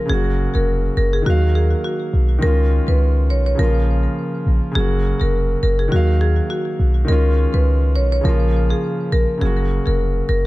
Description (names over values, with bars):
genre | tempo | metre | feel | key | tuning
dancehall | 103 BPM | 4/4 | swing 56% on 16ths | F# major | A4 = 440 Hz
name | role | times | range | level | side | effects
warm concert grand piano | accompaniment | 0.0-10.5 s | C#3 to E#5 | -23 LUFS | right 1 dB | none
marimba with medium mallets | melody | 0.1-10.4 s | F#4 to C#5 | -23 LUFS | left 1 dB | ping-pong delay
clean 808-style bass | bass | 0.1-10.5 s | E#1 to D#2 | -16 LUFS | equal | none
room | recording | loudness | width
small room ambience | none | -15 LUFS | side -18 dB against mid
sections
0.0-9.4 A section; 9.4-10.5 B section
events
none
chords
0.1 F#; 1.3 D#madd9; 2.4 C#add9; 3.6 A#m; 4.8 F#; 5.9 D#madd9; 7.1 C#add9; 8.2 A#m; 9.4 F#